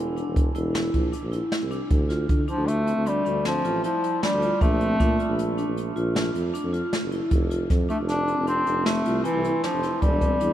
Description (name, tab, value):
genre	progressive instrumental, band music in an uneven meter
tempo	155 BPM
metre	7/4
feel	straight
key	D minor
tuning	A4 = 440 Hz
part	clear bass clarinet	melody	0.0-10.5 s	E3 to D4	-26 LUFS	equal	none
part	vibraphone with medium hard mallets	arpeggios	0.0-10.5 s	C4 to F4	-29 LUFS	equal	none
part	warm tuba	bass	0.0-10.5 s	E1 to D3	-28 LUFS	equal	none
part	jazz brush drum kit	drums	0.2-10.5 s	hi-hat, kick drum, snare drum	-26 LUFS	equal	none
room	moderate cathedral reverb, RT60 7.0 s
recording	in a vast, echoing space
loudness	-21 LUFS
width	side -12 dB against mid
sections	0.0-10.5 A section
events	bass clarinet solo 0.0-10.5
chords	0.0 C9/E (rootless); 1.9 Dm; 4.6 Bbmaj7; 7.3 Fmaj7(no3); 10.0 Em7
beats	0.36 0.74 1.13 1.52 | 1.90 2.29 2.68 3.06 3.45 3.84 4.22 | 4.61 5.00 5.38 5.77 6.15 6.54 6.93 | 7.31 7.70 8.09 8.47 8.86 9.25 9.63 | 10.02 10.41